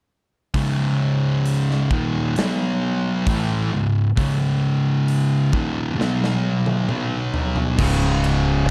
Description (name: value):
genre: stoner and doom metal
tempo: 66 BPM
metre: 4/4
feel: straight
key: C# minor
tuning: A4 = 440 Hz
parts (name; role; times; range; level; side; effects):
- thick fuzz guitar; riff; 0.5-8.7 s; C#2 to B3; -25 LUFS; equal; distortion
- thick fuzz guitar; riff; 0.5-8.7 s; C#2 to B3; -24 LUFS; equal; distortion
- big rock drum kit; drums; 0.5-8.4 s; crash cymbal, hi-hat, kick drum, ride cymbal, snare drum, toms; -28 LUFS; equal; none
- cranked stack guitar; riff; 7.8-8.7 s; C#2 to C#3; -28 LUFS; equal; overdrive
- growling fingered electric bass; bass; 7.8-8.6 s; C#1; -24 LUFS; equal; overdrive
room: small room ambience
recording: dark, warm production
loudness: -21 LUFS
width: mono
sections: 0.5-7.8 A section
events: drum fill 6.0-7.8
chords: 0.5 C#5; 2.4 B5; 3.3 C#m; 6.0 B5; 7.8 C#5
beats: | 0.54 1.45 2.36 3.27 | 4.18 5.08 5.99 6.89 | 7.79